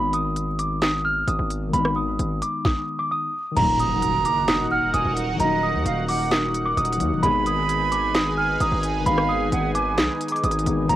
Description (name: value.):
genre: hip hop, trap.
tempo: 131 BPM.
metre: 4/4.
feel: half-time.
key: unclear.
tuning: A4 = 442 Hz.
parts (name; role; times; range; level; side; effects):
celesta; melody; 0.0-11.0 s; Bb5 to F6; -24 LUFS; equal; cassette tape.
warbly lo-fi synth keys; accompaniment; 0.0-11.0 s; Eb3 to Eb4; -29 LUFS; left 5 dB; chorus, cassette tape.
distorted 808-style bass; bass; 0.0-11.0 s; D1 to Eb2; -27 LUFS; equal; distortion.
trap drum kit; drums; 0.1-11.0 s; crash cymbal, handclaps, hi-hat, kick drum, rim click, snare drum; -26 LUFS; equal; cassette tape.
breathy silver concert flute; second line; 3.6-11.0 s; Eb5 to Cb6; -26 LUFS; right 8 dB; cassette tape, tape echo.
sweeping resonant pad; sustained chords; 3.6-11.0 s; Eb4 to Ab5; -30 LUFS; equal; chorus, cassette tape.
warm chamber string section; stabs; 3.6-3.8, 7.2-7.4, 10.9-11.0 s; Eb2 to Ab3; -30 LUFS; left 3 dB; cassette tape, tape echo.
impact; sound effects; 3.6-5.4 s; none; -33 LUFS; equal; none.
room: little or no reverb.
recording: home recording on cassette, vinyl crackle.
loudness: -20 LUFS.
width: side -13 dB against mid.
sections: 0.0-3.6 A section; 3.6-11.0 B section.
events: impact 3.6-5.4.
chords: 0.0 Abm; 3.6 Ebm; 7.2 Abm.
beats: 0.36 0.82 1.28 | 1.73 2.19 2.65 3.11 | 3.57 4.02 4.48 4.94 | 5.40 5.86 6.31 6.77 | 7.23 7.69 8.15 8.60 | 9.06 9.52 9.98 10.44 | 10.89.